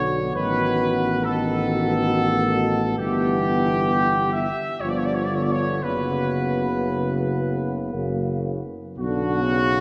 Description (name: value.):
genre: classical, hymn-like piece for brass band.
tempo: 55-71 BPM.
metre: 3/4.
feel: rubato.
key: unclear.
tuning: A4 = 438 Hz.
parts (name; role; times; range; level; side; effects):
bright trumpet section; melody; 0.0-9.8 s; F#4 to E5; -27 LUFS; equal; none.
dark French horn section; second line; 0.0-9.8 s; B3 to G4; -33 LUFS; equal; none.
clear euphonium; accompaniment; 0.0-9.8 s; C#3 to B3; -30 LUFS; equal; none.
clear trombone; accompaniment; 0.0-8.6 s; C#3 to F3; -32 LUFS; equal; none.
dark tuba; bass; 0.0-9.8 s; F#1 to B1; -28 LUFS; equal; none.
room: wet church reverb, RT60 3.4 s.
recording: nothing above 10.8 kHz.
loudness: -23 LUFS.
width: mono.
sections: 0.0-9.0 A section.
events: none.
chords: 0.3 B7/A; 3.0 Em/G; 4.8 G7; 5.8 F#sus4; 7.9 F#; 9.0 Bm.